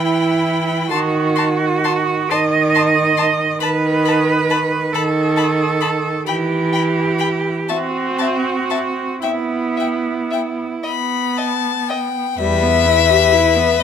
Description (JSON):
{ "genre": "classical, slow romantic movement for string quartet", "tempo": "37-48 BPM (dotted quarters)", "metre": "6/8", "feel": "rubato", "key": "E minor", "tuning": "A4 = 440 Hz", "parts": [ { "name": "bright violin", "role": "melody", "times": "0.0-13.8 s", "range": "E5 to B#5", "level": "-19 LUFS", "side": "left 11 dB", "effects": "none" }, { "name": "rich violin", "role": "second line", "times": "0.0-13.8 s", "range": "B4 to A5", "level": "-25 LUFS", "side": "left 4 dB", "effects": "none" }, { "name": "rich viola", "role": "accompaniment", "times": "0.0-13.8 s", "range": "D#3 to G4", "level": "-19 LUFS", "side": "right 2 dB", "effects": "none" }, { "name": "rich cello", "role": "bass", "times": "0.0-13.8 s", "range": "E2 to D#5", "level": "-19 LUFS", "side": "right 4 dB", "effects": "none" } ], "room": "wet large studio reverb, RT60 1.4 s", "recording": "none", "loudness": "-15 LUFS", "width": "side -8 dB against mid", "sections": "0.0-12.4 A section; 12.4-13.8 B section", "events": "none", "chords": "0.0 Em; 0.9 D#m; 3.6 B7/D#; 6.3 Em; 7.7 N.C.; 9.2 E5/B; 10.8 N.C.; 12.4 Em", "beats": "| 0.92 2.33 | 3.64 4.95 | 6.28 7.70 | 9.24 10.84 | 12.37 13.79" }